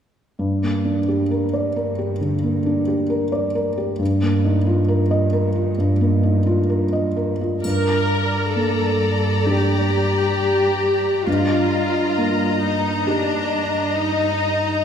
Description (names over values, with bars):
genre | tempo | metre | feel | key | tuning
cinematic, emotional film score for orchestra | 66 BPM | 4/4 | rubato | G minor | A4 = 440 Hz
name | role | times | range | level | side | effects
felt-muted upright piano | accompaniment | 0.4-14.8 s | G2 to Eb5 | -21 LUFS | equal | none
rich studio cello section | bass | 0.4-14.8 s | G2 | -24 LUFS | right 1 dB | none
warm studio violin section | second line | 7.6-14.8 s | D5 to Bb5 | -24 LUFS | left 5 dB | none
rich studio viola section | accompaniment | 7.6-14.8 s | D4 to Bb4 | -21 LUFS | equal | none
triangle | percussion | 7.6-9.4 s | none | -39 LUFS | left 1 dB | none
room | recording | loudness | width
wet scoring stage reverb, RT60 2.0 s | recorded in a church or concert hall | -17 LUFS | side -8 dB against mid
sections
0.4-7.6 A section; 7.6-14.8 B section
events
none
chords
0.4 Gm; 4.0 Ebadd9/G; 7.6 Gm; 11.3 Ebadd9/G